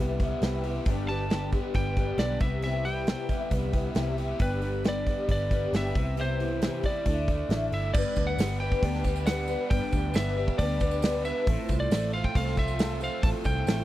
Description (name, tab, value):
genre	folk rock and heartland rock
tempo	136 BPM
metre	4/4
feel	straight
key	G major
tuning	A4 = 442 Hz
part	picked twelve-string acoustic guitar	accompaniment	0.0-13.8 s	G2 to B4	-33 LUFS	left 3 dB	ensemble chorus
part	overdriven electric guitar	riff	0.0-13.8 s	G2 to G4	-35 LUFS	right 2 dB	none
part	vintage muted picked electric bass	bass	0.0-13.8 s	G1 to D2	-31 LUFS	equal	none
part	natural country drum kit	drums	0.2-13.8 s	crash cymbal, hi-hat, kick drum, snare drum	-27 LUFS	equal	none
part	bright tonewheel organ	sustained chords	0.9-13.8 s	F4 to D6	-46 LUFS	right 1 dB	slow rotary speaker
part	lightly driven lead guitar	melody	1.1-13.8 s	B4 to A5	-33 LUFS	equal	none
part	tambourine	percussion	8.2-13.8 s	none	-49 LUFS	right 16 dB	none
room	little or no reverb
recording	dry, close 1970s-style studio recording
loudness	-25 LUFS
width	side -14 dB against mid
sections	0.0-7.9 A section; 7.9-13.8 B section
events	none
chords	0.0 Cmaj7; 0.9 G; 2.4 Cmaj7; 4.4 G; 6.0 Cmaj7; 7.1 Dsus2; 7.9 G; 11.5 F/A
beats	0.42 | 0.86 1.31 1.75 2.19 | 2.63 3.08 3.52 3.96 | 4.41 4.85 5.29 5.73 | 6.17 6.62 7.06 7.50 | 7.94 8.38 8.82 9.27 | 9.71 10.15 10.59 11.03 | 11.47 11.91 12.35 12.79 | 13.23 13.67